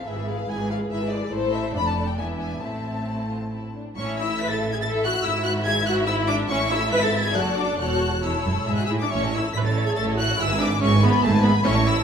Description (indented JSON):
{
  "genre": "quick classical-period movement for string orchestra",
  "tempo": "141 BPM",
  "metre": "3/4",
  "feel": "rubato",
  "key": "A minor, A major from 4.0 s",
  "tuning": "A4 = 441 Hz",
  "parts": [
    { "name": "dark studio violin section", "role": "melody", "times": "0.0-12.0 s", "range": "C5 to B6", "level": "-27 LUFS", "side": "left 4 dB", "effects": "none" },
    { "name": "warm studio violin section", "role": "second line", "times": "0.0-12.0 s", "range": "D4 to G#5", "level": "-29 LUFS", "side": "left 2 dB", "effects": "none" },
    { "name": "dark studio viola section", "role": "accompaniment", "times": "0.0-12.0 s", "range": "E3 to B4", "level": "-27 LUFS", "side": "right 1 dB", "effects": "none" },
    { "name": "rich studio cello section", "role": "bass", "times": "0.0-12.0 s", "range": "E2 to A2", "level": "-27 LUFS", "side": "right 2 dB", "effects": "none" },
    { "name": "rich studio double bass section", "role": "bass", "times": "0.0-12.0 s", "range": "E1 to A1", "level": "-28 LUFS", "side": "right 2 dB", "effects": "none" }
  ],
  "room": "wet recital hall reverb, RT60 1.4 s",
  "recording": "minimal, uncompressed stereo recording",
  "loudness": "-20 LUFS",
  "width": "side -7 dB against mid",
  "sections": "0.0-4.0 A section; 4.0-12.0 A section",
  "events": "none",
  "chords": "0.1 E/G#; 1.3 Am; 1.8 Dm/F; 2.2 E7; 2.6 Am; 4.0 A5; 5.2 E/G#; 6.5 A5; 7.4 D/F#; 7.8 A/E; 8.7 E; 9.1 A; 10.4 E/G#; 11.6 A"
}